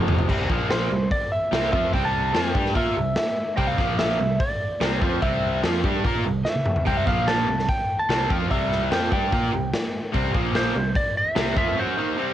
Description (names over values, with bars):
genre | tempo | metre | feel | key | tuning
hard rock | 146 BPM | 4/4 | straight | C mixolydian | A4 = 440 Hz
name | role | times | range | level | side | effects
cranked stack guitar | riff | 0.0-12.3 s | F2 to Bb4 | -27 LUFS | right 10 dB | overdrive, cassette tape
distorted electric guitar | riff | 0.0-12.3 s | F2 to Bb4 | -28 LUFS | left 12 dB | distortion, cassette tape
modern bright picked electric bass | bass | 0.0-11.8 s | F1 to Bb2 | -29 LUFS | equal | none
raw garage drum kit | drums | 0.1-11.7 s | crash cymbal, hi-hat, kick drum, snare drum, toms | -25 LUFS | left 1 dB | none
lightly driven lead guitar | melody | 0.7-12.3 s | C5 to A5 | -26 LUFS | right 1 dB | none
room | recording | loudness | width
light reverb | home recording on cassette | -20 LUFS | side -12 dB against mid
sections
0.3-12.3 A section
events
drum fill 0.0, 6.5-6.9; break 11.8-12.3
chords
0.3 C5; 0.5 Bb5; 0.9 C; 3.8 Bb5; 4.2 C; 7.1 Bb5; 7.5 C5; 10.3 Bb5; 10.8 C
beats
| 0.28 0.69 1.11 1.52 | 1.93 2.34 2.75 3.17 | 3.58 3.99 4.40 4.81 | 5.22 5.63 6.05 6.46 | 6.87 7.28 7.69 8.10 | 8.51 8.91 9.32 9.73 | 10.14 10.55 10.96 11.36 | 11.77 12.18